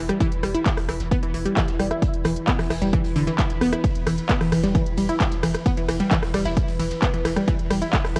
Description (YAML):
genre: driving peak-time techno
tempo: 132 BPM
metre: 4/4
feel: straight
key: E minor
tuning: A4 = 440 Hz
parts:
  - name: unison pluck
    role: riff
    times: 0.0-8.2 s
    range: D3 to E4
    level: -27 LUFS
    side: equal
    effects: tube saturation, sidechain pumping, cassette tape, tape echo
  - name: warm sub bass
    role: bass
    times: 0.0-8.2 s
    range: E1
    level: -34 LUFS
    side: equal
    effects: tube saturation, sidechain pumping, low-pass filter
  - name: metallic inharmonic drone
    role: drone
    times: 0.0-8.2 s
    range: E3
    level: -34 LUFS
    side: equal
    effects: chorus, built-in reverb, sidechain pumping, cassette tape
  - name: techno drum kit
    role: drums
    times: 0.1-8.2 s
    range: handclaps, hi-hat, ride cymbal, rim click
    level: -30 LUFS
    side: equal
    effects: overdrive, cassette tape
  - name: electronic kick drum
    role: drums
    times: 0.2-8.0 s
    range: none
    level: -25 LUFS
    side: equal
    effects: overdrive, cassette tape
  - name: jazz brush drum kit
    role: drums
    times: 0.2-8.2 s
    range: hi-hat, snare drum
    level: -44 LUFS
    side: equal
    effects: none
room: light reverb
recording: home recording on cassette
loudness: -22 LUFS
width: mono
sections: 0.0-8.2 A section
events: none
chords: 0.0 Em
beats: | 0.20 0.66 1.11 1.57 | 2.02 2.48 2.93 3.39 | 3.84 4.29 4.75 5.20 | 5.66 6.11 6.57 7.02 | 7.48 7.93